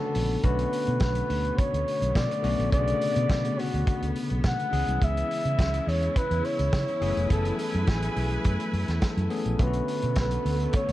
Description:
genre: disco.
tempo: 105 BPM.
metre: 4/4.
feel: straight.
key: B dorian.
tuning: A4 = 440 Hz.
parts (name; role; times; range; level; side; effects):
breathy flugelhorn; melody; 0.0-10.9 s; F#4 to F#5; -30 LUFS; equal; none.
barky tine electric piano; accompaniment; 0.0-10.9 s; C#3 to G#4; -32 LUFS; left 5 dB; none.
clear symphonic string section; sustained chords; 0.0-10.9 s; B2 to G#5; -35 LUFS; equal; none.
warm soul drum kit; drums; 0.1-10.9 s; hi-hat, kick drum, snare drum; -28 LUFS; equal; none.
vintage muted fingered electric bass; bass; 0.2-10.9 s; E#1 to C#3; -28 LUFS; equal; none.
room: light reverb, small room ambience.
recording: dark, warm production.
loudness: -24 LUFS.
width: side -15 dB against mid.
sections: 0.4-10.9 A section.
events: none.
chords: 0.4 Bm9; 4.7 C#m7; 7.0 F#m11; 9.6 Bm9.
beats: | 0.44 1.01 1.58 2.15 | 2.73 3.30 3.87 4.44 | 5.01 5.59 6.16 6.73 | 7.31 7.88 8.45 9.02 | 9.60 10.17 10.74.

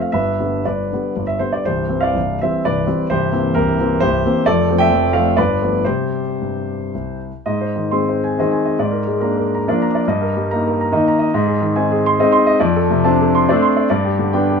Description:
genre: classical, romantic triple-time dance for piano with dotted rhythms.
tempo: 105-149 BPM.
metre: 3/4.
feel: rubato.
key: C major, Ab major from 7.4 s.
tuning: A4 = 440 Hz.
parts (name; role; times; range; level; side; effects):
warm concert grand piano; solo; 0.0-14.6 s; C1 to C6; -15 LUFS; equal; none.
room: moderate studio ambience, RT60 0.5 s.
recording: minimal, uncompressed stereo recording, lossy compression artefacts.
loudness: -15 LUFS.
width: side -5 dB against mid.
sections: 0.0-7.4 A section; 7.4-14.6 B section.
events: none.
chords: 0.1 G; 1.7 C; 3.1 C7; 4.4 F6; 5.4 G9; 5.8 C5; 7.4 Ab; 8.8 Bb7/Ab; 10.1 Eb/G; 11.3 Ab; 12.6 Dm7/F; 13.9 G.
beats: | 0.12 0.64 1.15 | 1.65 2.15 2.64 | 3.08 3.54 4.00 | 4.45 4.89 5.35 | 5.83 6.38 6.93 | 7.44 7.92 8.39 | 8.81 9.24 9.67 | 10.08 10.51 10.93 | 11.33 11.76 12.19 | 12.61 13.05 13.49 | 13.91 14.35.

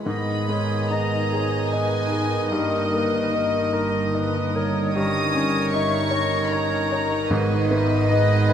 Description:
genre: classical.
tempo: 75 BPM.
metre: 3/4.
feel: rubato.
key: G# minor.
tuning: A4 = 440 Hz.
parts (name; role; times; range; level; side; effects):
clear baby grand piano; melody; 0.0-8.5 s; G2 to D#5; -26 LUFS; left 1 dB; none.
warm symphonic violin section; melody; 0.0-8.5 s; D#5 to D#6; -30 LUFS; left 2 dB; none.
rich studio violin section; second line; 0.0-8.5 s; G#4 to D#5; -31 LUFS; equal; none.
dark symphonic viola section; accompaniment; 0.0-8.5 s; D#3 to D#4; -33 LUFS; right 1 dB; none.
mellow bassoon; accompaniment; 0.0-8.5 s; D#3; -32 LUFS; right 2 dB; none.
dark French horn section; sustained chords; 0.0-8.5 s; A#3 to D#4; -30 LUFS; left 5 dB; none.
rich symphonic double bass section; bass; 0.0-8.5 s; G1 to G#1; -29 LUFS; right 4 dB; none.
bright clarinet; second line; 0.1-8.5 s; D#4; -34 LUFS; left 2 dB; none.
clear oboe; second line; 0.1-8.5 s; B4 to D#5; -32 LUFS; right 1 dB; none.
silver concert flute; second line; 0.1-8.5 s; A#4 to E5; -33 LUFS; left 2 dB; none.
rich symphonic cello section; bass; 0.1-8.5 s; G2 to G#2; -28 LUFS; right 2 dB; none.
timpani; percussion; 7.3-8.5 s; G#2; -30 LUFS; equal; none.
room: moderate recital hall reverb, RT60 1.3 s.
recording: none.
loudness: -20 LUFS.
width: side -8 dB against mid.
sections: 0.0-8.5 A section.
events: none.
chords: 0.0 G#m; 2.5 D#/G; 5.0 D#7/G; 7.3 G#m.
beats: | 0.05 0.92 1.73 | 2.53 3.34 4.16 | 4.96 5.74 6.53 | 7.30 8.09.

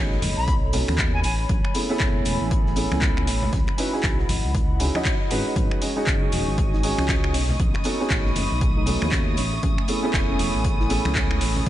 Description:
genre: deep house.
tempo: 118 BPM.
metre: 4/4.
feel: swing 60% on 16ths.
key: unclear.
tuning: A4 = 440 Hz.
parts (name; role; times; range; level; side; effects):
dark analog pad; sustained chords; 0.0-11.7 s; A3 to C#6; -31 LUFS; left 1 dB; chorus, sidechain pumping.
felt-muted upright piano; stabs; 0.0-11.7 s; G#3 to D#5; -27 LUFS; right 1 dB; sidechain pumping, tape echo.
smooth gliding synth bass; bass; 0.0-11.7 s; D#1 to D#2; -26 LUFS; equal; sidechain pumping.
warm soul drum kit; drums; 0.1-11.7 s; hi-hat, snare drum; -40 LUFS; left 5 dB; none.
punchy analog drum machine; drums; 0.2-11.5 s; finger snaps, handclaps, hi-hat; -29 LUFS; equal; none.
congas and bongos; percussion; 0.2-11.7 s; none; -33 LUFS; left 1 dB; none.
bright reedy silver concert flute; melody; 0.4-1.3 s; G#5 to B5; -32 LUFS; left 1 dB; ping-pong delay.
electronic kick drum; drums; 0.5-11.7 s; none; -24 LUFS; equal; none.
soft round pluck; arpeggios; 5.6-11.7 s; C#4 to G#4; -36 LUFS; equal; none.
soft string machine; texture; 6.0-11.7 s; D#6; -35 LUFS; equal; ensemble chorus, sidechain pumping.
room: light reverb.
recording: vinyl crackle, nothing above 10.9 kHz.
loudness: -20 LUFS.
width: side -13 dB against mid.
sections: 0.0-11.7 A section.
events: none.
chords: 0.0 B9; 1.2 Amaj9; 3.5 C#m11; 5.6 G#7sus4; 7.3 B9; 9.4 Amaj9.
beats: 0.48 0.99 | 1.50 2.00 2.51 3.02 | 3.53 4.04 4.55 5.05 | 5.56 6.07 6.58 7.09 | 7.60 8.11 8.61 9.12 | 9.63 10.14 10.65 11.16 | 11.66.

